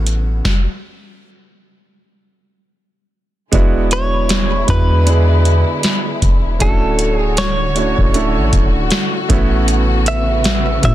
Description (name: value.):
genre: contemporary R&B.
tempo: 78 BPM.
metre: 4/4.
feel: swing 58% on 16ths.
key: unclear.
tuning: A4 = 441 Hz.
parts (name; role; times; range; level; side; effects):
warm grand piano; accompaniment; 0.0-10.9 s; G#3 to A4; -21 LUFS; right 5 dB; none.
warm studio string section; sustained chords; 0.0-10.9 s; C#3 to C#5; -23 LUFS; left 2 dB; none.
soft 808-style bass; bass; 0.0-10.9 s; D1 to A2; -16 LUFS; equal; none.
booming analog drum machine; drums; 0.1-10.9 s; hi-hat, kick drum, snare drum; -16 LUFS; equal; soft clipping on snare.
direct-recorded clean electric guitar; melody; 3.9-10.9 s; A4 to E5; -20 LUFS; equal; digital delay.
room: little or no reverb.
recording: dense, heavily limited modern master.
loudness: -12 LUFS.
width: side -13 dB against mid.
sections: 0.0-3.5 A section; 3.5-10.9 B section.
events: stop 0.5-3.5.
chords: 0.5 N.C.; 3.5 E7; 6.6 Dmaj7; 9.3 A69.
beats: | 0.45 1.22 1.99 2.76 | 3.53 4.30 5.07 5.83 | 6.60 7.37 8.14 8.91 | 9.68 10.45.